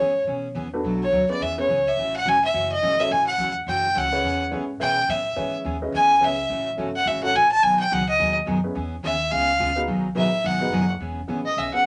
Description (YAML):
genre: country, western swing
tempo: 212 BPM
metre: 4/4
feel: swing 61% on 8ths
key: E major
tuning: A4 = 440 Hz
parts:
  - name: clear fiddle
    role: melody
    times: 0.0-10.9 s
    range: C#5 to A5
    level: -23 LUFS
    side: equal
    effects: none
  - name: picked steel-string acoustic guitar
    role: accompaniment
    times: 0.0-11.8 s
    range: B2 to G#4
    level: -31 LUFS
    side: equal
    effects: none
  - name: upright bass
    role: bass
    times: 0.0-11.8 s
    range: E1 to B2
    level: -37 LUFS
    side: equal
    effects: none
  - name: dark upright piano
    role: accompaniment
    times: 0.7-11.8 s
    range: B3 to E5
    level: -32 LUFS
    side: equal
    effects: none
  - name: rich fiddle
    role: second line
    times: 11.5-11.9 s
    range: D#5 to F#5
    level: -23 LUFS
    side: equal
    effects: none
room: moderate club reverb, RT60 0.5 s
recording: nothing above 10.7 kHz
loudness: -22 LUFS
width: mono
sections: 0.0-11.0 A section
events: fiddle solo 0.0-11.0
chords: 0.0 E6; 0.8 Bm7; 1.4 E6; 2.0 A6; 4.2 E6; 6.5 F#m7; 7.6 B6; 8.7 E6; 9.3 C#7b9; 9.9 B6; 11.0 E6